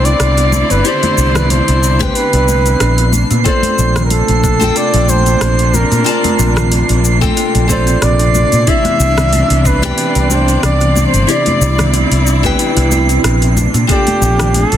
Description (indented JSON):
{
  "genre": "sunset chillout",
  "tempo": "92 BPM",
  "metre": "4/4",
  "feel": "swing 54% on 16ths",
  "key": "C major",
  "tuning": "A4 = 441 Hz",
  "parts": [
    { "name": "trumpet with bucket mute", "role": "melody", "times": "0.0-14.8 s", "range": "G4 to E5", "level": "-17 LUFS", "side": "equal", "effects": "ping-pong delay" },
    { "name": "nylon-string guitar", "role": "accompaniment", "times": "0.0-14.8 s", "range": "C4 to A5", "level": "-20 LUFS", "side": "moving between left 8 dB and right 8 dB", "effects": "auto-pan, digital delay" },
    { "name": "dark chamber string section", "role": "sustained chords", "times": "0.0-14.8 s", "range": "C3 to D5", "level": "-20 LUFS", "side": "left 2 dB", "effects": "none" },
    { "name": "kalimba", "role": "arpeggios", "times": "0.0-14.8 s", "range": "A3 to D4", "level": "-21 LUFS", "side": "right 5 dB", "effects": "digital delay" },
    { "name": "fretless electric bass", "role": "bass", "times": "0.0-14.8 s", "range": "G1 to Bb2", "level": "-13 LUFS", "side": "equal", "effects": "none" },
    { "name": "drifting glass-harmonics texture", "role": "texture", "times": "0.0-14.8 s", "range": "C7", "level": "-22 LUFS", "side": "right 7 dB", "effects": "chorus, built-in reverb" },
    { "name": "deep house drum kit", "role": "drums", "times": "0.1-14.8 s", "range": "cabasa, hi-hat, rim click", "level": "-20 LUFS", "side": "left 1 dB", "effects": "studio ambience, soft clipping on snare" },
    { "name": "congas", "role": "percussion", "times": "0.5-14.7 s", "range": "none", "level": "-23 LUFS", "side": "left 3 dB", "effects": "none" },
    { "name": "electronic kick drum", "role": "drums", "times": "2.0-14.0 s", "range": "none", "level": "-16 LUFS", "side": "equal", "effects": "studio ambience" }
  ],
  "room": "light reverb, small room ambience",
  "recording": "dense, heavily limited modern master",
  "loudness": "-10 LUFS",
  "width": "side -10 dB against mid",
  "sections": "0.0-14.8 A section",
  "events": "none",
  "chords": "0.0 Cmaj9; 3.1 Bbmaj9; 8.7 Cmaj9; 13.6 Bbmaj9"
}